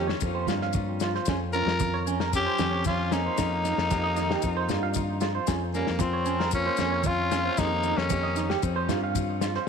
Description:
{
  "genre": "highlife guitar band",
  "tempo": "114 BPM",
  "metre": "4/4",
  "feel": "straight",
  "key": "unclear",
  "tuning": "A4 = 440 Hz",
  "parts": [
    { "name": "raspy tenor saxophone", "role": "melody", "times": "0.0-8.5 s", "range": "Bb3 to Bb4", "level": "-29 LUFS", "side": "left 3 dB", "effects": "tape echo" },
    { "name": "clear alto saxophone", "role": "second line", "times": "0.0-8.5 s", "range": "F3 to F4", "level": "-36 LUFS", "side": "right 11 dB", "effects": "none" },
    { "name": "nylon-string guitar", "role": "accompaniment", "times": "0.0-9.7 s", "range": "F2 to G4", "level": "-36 LUFS", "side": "left 12 dB", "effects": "none" },
    { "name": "electric guitar at the edge of break-up", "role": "arpeggios", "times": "0.0-9.7 s", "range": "Db4 to F5", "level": "-31 LUFS", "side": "right 9 dB", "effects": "tremolo, tape echo" },
    { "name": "fingered electric bass", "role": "bass", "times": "0.0-9.6 s", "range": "F2 to G2", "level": "-30 LUFS", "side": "equal", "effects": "none" },
    { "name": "warm soul drum kit", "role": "drums", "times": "0.1-9.6 s", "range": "kick drum, snare drum", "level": "-31 LUFS", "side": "left 5 dB", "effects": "none" },
    { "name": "congas", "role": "percussion", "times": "0.2-9.3 s", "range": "none", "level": "-35 LUFS", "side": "right 11 dB", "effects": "none" },
    { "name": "maracas", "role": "percussion", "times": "0.2-9.5 s", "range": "none", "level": "-40 LUFS", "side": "left 16 dB", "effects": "none" }
  ],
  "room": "light reverb, studio reverb",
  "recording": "1960s-style stereo with parts hard left and right",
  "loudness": "-24 LUFS",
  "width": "side -6 dB against mid",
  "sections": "0.0-9.7 A section",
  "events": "none",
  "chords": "0.2 C7sus4/F; 1.3 Bbmadd9/F; 3.4 Eb7/F; 4.4 C7sus4/F; 5.5 Bbmadd9/F; 7.6 Eb7/F; 8.6 Csus4/F"
}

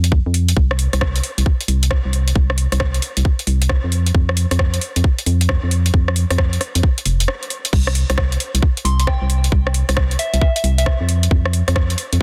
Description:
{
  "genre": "UK garage, two-step garage",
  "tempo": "134 BPM",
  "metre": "4/4",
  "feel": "swing 65% on 16ths",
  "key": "C major",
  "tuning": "A4 = 439 Hz",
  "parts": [
    { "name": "organ-like FM bass", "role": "bass", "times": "0.0-12.2 s", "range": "F1 to F2", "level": "-19 LUFS", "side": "equal", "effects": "tube saturation" },
    { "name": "garage drum kit", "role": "drums", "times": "0.0-12.2 s", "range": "crash cymbal, hi-hat, rim click", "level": "-25 LUFS", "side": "equal", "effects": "overdrive" },
    { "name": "electronic kick drum", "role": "drums", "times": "0.1-11.9 s", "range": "none", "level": "-18 LUFS", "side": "equal", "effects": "none" },
    { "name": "soft synth bell", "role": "melody", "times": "8.8-11.0 s", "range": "E5 to C6", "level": "-27 LUFS", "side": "equal", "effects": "chorus, dub echo" }
  ],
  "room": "digital ambience",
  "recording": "dense, heavily limited modern master",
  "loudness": "-18 LUFS",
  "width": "mono",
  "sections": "0.0-12.2 A section",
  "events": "break 7.3-7.7",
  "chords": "none"
}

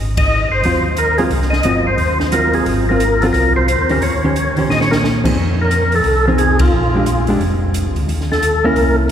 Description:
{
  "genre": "soul jazz organ trio",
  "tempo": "177 BPM",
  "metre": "4/4",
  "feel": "swing 63% on 8ths",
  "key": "unclear",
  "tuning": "A4 = 438 Hz",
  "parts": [
    { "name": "mellow tonewheel organ", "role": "bass", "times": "0.0-9.1 s", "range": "F1 to C3", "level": "-18 LUFS", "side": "equal", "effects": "slow rotary speaker" },
    { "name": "percussive tonewheel organ", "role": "melody", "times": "0.2-9.0 s", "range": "F4 to Eb5", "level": "-17 LUFS", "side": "equal", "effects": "slow rotary speaker, overdrive, chorus vibrato" },
    { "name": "open jazz drum kit", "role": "drums", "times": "0.2-9.1 s", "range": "crash cymbal, hi-hat, kick drum, ride cymbal, snare drum", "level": "-23 LUFS", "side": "equal", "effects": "none" },
    { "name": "hollow-body jazz guitar", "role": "accompaniment", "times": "0.7-9.1 s", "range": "Eb3 to C5", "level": "-19 LUFS", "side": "right 1 dB", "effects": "none" }
  ],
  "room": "wet cathedral reverb, RT60 5.5 s",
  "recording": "recorded in a church or concert hall",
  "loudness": "-13 LUFS",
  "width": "side -9 dB against mid",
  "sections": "0.0-9.1 A section",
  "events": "band accent 0.1, 6.6; drum fill 4.7-5.0",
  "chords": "0.0 Ab13; 4.0 Eb13; 5.4 Fm7; 6.7 Bb6; 8.1 Eb5"
}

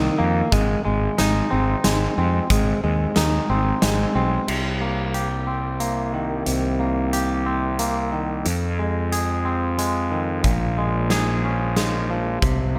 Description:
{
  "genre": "post-rock",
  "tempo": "91 BPM",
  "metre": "3/4",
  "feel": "straight",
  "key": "unclear",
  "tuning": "A4 = 438 Hz",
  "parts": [
    { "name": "twangy electric guitar", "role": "arpeggios", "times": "0.0-12.8 s", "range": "F2 to Ab4", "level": "-26 LUFS", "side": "equal", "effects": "digital delay" },
    { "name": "fuzz fingered electric bass", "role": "bass", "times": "0.0-12.8 s", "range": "Ab1 to F2", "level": "-26 LUFS", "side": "equal", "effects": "overdrive" },
    { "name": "huge arena drum kit", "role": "drums", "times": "0.5-12.6 s", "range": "crash cymbal, hi-hat, kick drum, snare drum", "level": "-27 LUFS", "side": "equal", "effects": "none" }
  ],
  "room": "light reverb, small room ambience",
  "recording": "none",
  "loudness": "-22 LUFS",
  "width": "mono",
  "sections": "0.0-4.5 A section; 4.5-12.8 B section",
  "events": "none",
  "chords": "0.0 Cm7; 0.5 Ab; 4.5 Cm7; 8.5 Fm7; 10.4 Bbm7"
}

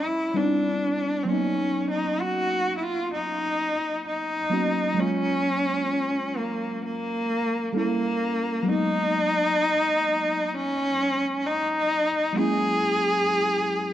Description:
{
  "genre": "R&B",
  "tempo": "65 BPM",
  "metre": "4/4",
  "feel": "swing 58% on 16ths",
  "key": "F# major",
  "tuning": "A4 = 440 Hz",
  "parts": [
    { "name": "rich cello", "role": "melody", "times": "0.0-13.9 s", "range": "A#3 to G#4", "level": "-24 LUFS", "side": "equal", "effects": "digital delay" },
    { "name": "muted felt-like synth keys", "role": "accompaniment", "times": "0.0-13.9 s", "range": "F#3 to A4", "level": "-28 LUFS", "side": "equal", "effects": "chorus" }
  ],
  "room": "light reverb, small room ambience",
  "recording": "worn, warbling old tape, cassette tape, warbly pitch drift",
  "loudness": "-22 LUFS",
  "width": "side -12 dB against mid",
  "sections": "0.0-5.0 A section; 5.0-13.9 A section",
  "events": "none",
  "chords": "0.4 Cmaj7; 1.3 Bmaj7; 5.0 F#maj7; 7.7 Gdim7; 8.7 G#m7; 12.4 F#7"
}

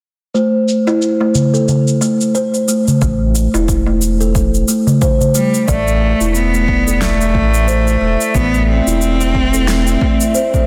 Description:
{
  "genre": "organic downtempo",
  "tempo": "90 BPM",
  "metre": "4/4",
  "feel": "swing 57% on 16ths",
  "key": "A minor",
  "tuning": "A4 = 441 Hz",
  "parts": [
    { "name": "kalimba", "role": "arpeggios", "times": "0.3-10.7 s", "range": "A3 to C5", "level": "-19 LUFS", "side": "equal", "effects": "low-pass filter, delay" },
    { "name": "electronic shaker and snare drum", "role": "drums", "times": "0.3-10.7 s", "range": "none", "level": "-25 LUFS", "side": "equal", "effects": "low-pass filter on perc, small room reverb, low-pass filter on snare" },
    { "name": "bronze singing bowl", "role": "texture", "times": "0.3-10.7 s", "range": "C5 to D5", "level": "-27 LUFS", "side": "equal", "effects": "none" },
    { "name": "darbuka", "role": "percussion", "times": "0.9-5.3 s", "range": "none", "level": "-19 LUFS", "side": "equal", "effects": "none" },
    { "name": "warm sub bass", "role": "bass", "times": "3.0-10.0 s", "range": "E1 to A1", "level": "-18 LUFS", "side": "equal", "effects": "sidechain pumping" },
    { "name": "electronic kick drum", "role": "drums", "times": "3.0-10.7 s", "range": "none", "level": "-20 LUFS", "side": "equal", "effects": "small room reverb" },
    { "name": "rich cello", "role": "melody", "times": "5.4-10.7 s", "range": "G3 to C4", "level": "-20 LUFS", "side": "equal", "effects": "delay" },
    { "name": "warbly tape-like pad", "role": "sustained chords", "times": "6.6-10.7 s", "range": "A3 to E5", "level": "-27 LUFS", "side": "equal", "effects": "chorus, built-in reverb, phaser, sidechain pumping" }
  ],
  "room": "moderate concert hall reverb, RT60 2.0 s",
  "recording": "dense, heavily limited modern master",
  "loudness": "-14 LUFS",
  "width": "mono",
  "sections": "0.3-5.7 A section; 5.7-10.7 B section",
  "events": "filter sweep on kalimba 0.3-5.7",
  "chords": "0.3 Am"
}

